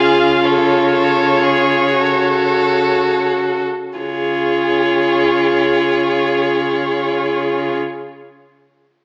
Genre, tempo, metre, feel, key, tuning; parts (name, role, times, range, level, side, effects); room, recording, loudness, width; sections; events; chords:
classical, slow romantic movement for string quartet; 27-45 BPM (dotted quarters); 6/8; rubato; Db major; A4 = 440 Hz
rich violin; melody; 0.0-7.8 s; Db5 to F5; -22 LUFS; equal
clear violin; second line; 0.0-7.8 s; Ab4 to A4; -22 LUFS; equal
clear viola; accompaniment; 0.0-7.8 s; F4 to Gb4; -20 LUFS; equal
clear cello; bass; 0.0-7.8 s; Db3; -24 LUFS; equal
wet scoring stage reverb, RT60 1.7 s; AM radio sound; -16 LUFS; mono
0.0-4.0 A section; 4.0-7.7 B section
slowing down 0.0-4.0
0.4 Gbm/Db; 4.0 Db